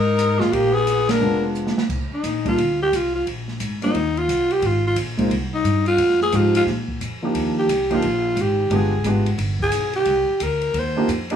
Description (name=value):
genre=jazz, small-group swing and bop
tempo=176 BPM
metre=4/4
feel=swing 64% on 8ths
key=C minor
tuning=A4 = 440 Hz
part: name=growling alto saxophone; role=melody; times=0.0-11.1 s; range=Eb4 to C5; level=-20 LUFS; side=left 1 dB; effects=plate reverb
part: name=breathy tenor saxophone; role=second line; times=0.0-1.4 s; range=Ab3 to Eb4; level=-26 LUFS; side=right 1 dB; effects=none
part: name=upright bass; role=bass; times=0.0-11.4 s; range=F1 to Bb2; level=-24 LUFS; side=equal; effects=none
part: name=open jazz drum kit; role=drums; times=0.2-11.4 s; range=crash cymbal, hi-hat, kick drum, ride cymbal, rim click, snare drum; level=-29 LUFS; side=right 1 dB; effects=none
part: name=warm grand piano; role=accompaniment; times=1.2-11.4 s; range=F3 to G4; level=-21 LUFS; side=right 1 dB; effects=none
room=moderate club reverb, RT60 0.6 s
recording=none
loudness=-18 LUFS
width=side -8 dB against mid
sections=0.0-1.9 A section; 1.9-11.4 B section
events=band accent 1.1; drum fill 1.6-1.9; alto saxophone solo 1.9-11.4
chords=0.0 Fm7; 0.5 Bb7b9; 1.9 Cm11; 3.3 Bbm9; 3.9 Ebsus2; 4.6 Ab6; 6.0 Fm7; 6.7 Bb; 7.4 Ebmaj9; 8.7 G7b9; 10.1 Cm11